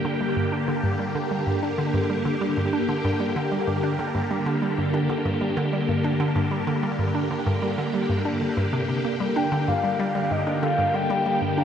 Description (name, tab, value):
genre	ambient, sequencer-driven space music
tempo	95 BPM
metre	4/4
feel	straight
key	G minor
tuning	A4 = 440 Hz
part	phased string machine	sustained chords	0.0-11.6 s	D3 to G4	-25 LUFS	equal	ensemble chorus, phaser
part	hollow square pluck	riff	0.0-11.6 s	G2 to D4	-26 LUFS	right 1 dB	chorus, phaser, tape echo
part	soft octave-layered synth lead	melody	9.4-11.6 s	Eb5 to Bb5	-24 LUFS	left 2 dB	chorus, phaser, tape echo
room	wet huge ambient reverb, RT60 7.7 s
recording	dreamy mix soaked in reverb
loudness	-22 LUFS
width	side -8 dB against mid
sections	0.0-11.6 A section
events	none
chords	0.0 Gm